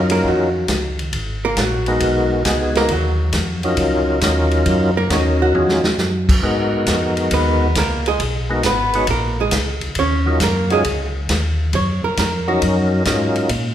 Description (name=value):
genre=soul jazz organ trio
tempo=136 BPM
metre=4/4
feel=swing 68% on 8ths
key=Eb minor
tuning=A4 = 440 Hz
part: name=percussive tonewheel organ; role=melody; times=0.0-13.5 s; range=Gb3 to Db5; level=-19 LUFS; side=left 1 dB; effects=slow rotary speaker, overdrive, chorus vibrato
part: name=mellow tonewheel organ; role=bass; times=0.0-13.7 s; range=Ab1 to Bb2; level=-20 LUFS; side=equal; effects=chorus vibrato, slow rotary speaker
part: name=archtop guitar, miked and amplified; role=accompaniment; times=0.1-13.0 s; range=Eb3 to Gb5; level=-21 LUFS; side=right 2 dB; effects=none
part: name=vintage drum kit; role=drums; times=0.1-13.6 s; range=crash cymbal, hi-hat, kick drum, ride cymbal, snare drum, toms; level=-22 LUFS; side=equal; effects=none
room=wet recital hall reverb, RT60 1.5 s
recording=recorded in a church or concert hall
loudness=-15 LUFS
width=side -10 dB against mid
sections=0.0-13.7 A section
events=hollow-body jazz guitar solo 0.0-13.7; drum fill 5.5-6.0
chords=0.0 Ebm9; 1.1 Abm9; 2.9 Ebm9; 6.4 Abm9; 10.0 Ebm9